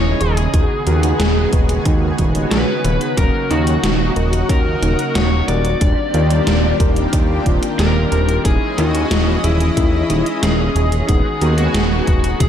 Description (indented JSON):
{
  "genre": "synthwave",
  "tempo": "91 BPM",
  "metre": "4/4",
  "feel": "straight",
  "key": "unclear",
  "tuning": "A4 = 440 Hz",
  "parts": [
    { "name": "lead guitar through a small cranked amp", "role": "melody", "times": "0.0-12.5 s", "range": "Fb4 to D5", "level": "-22 LUFS", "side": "left 2 dB", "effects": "overdrive, ping-pong delay" },
    { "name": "analog string pad", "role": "sustained chords", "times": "0.0-12.5 s", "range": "Db3 to Eb5", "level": "-23 LUFS", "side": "equal", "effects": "ensemble chorus, sidechain pumping" },
    { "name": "soft round pluck", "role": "arpeggios", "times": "0.0-12.5 s", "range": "Db4 to B4", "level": "-27 LUFS", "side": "right 3 dB", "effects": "chorus, digital delay" },
    { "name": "mellow synth brass", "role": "stabs", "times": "0.0-12.4 s", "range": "Gb3 to Eb5", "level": "-24 LUFS", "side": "left 3 dB", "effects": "chorus, digital delay" },
    { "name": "fat analog bass", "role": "bass", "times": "0.0-12.5 s", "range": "Eb1 to D#2", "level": "-17 LUFS", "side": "equal", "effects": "none" },
    { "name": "gated 80s digital drum machine", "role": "drums", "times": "0.2-12.5 s", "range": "hi-hat, snare drum, toms", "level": "-22 LUFS", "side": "right 1 dB", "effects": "gated reverb, gated reverb snare, overdrive" },
    { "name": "electronic kick drum", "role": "drums", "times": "0.5-12.5 s", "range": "none", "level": "-17 LUFS", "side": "equal", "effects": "none" }
  ],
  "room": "light reverb",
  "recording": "dark, warm production",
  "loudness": "-14 LUFS",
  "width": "side -9 dB against mid",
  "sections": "0.0-12.5 A section",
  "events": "none",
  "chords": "0.0 Dbmadd9/Eb; 0.5 B6/D#; 3.2 Ebm7; 5.8 Bb6/Eb; 8.4 Dbmadd9/Eb; 11.1 B6/D#"
}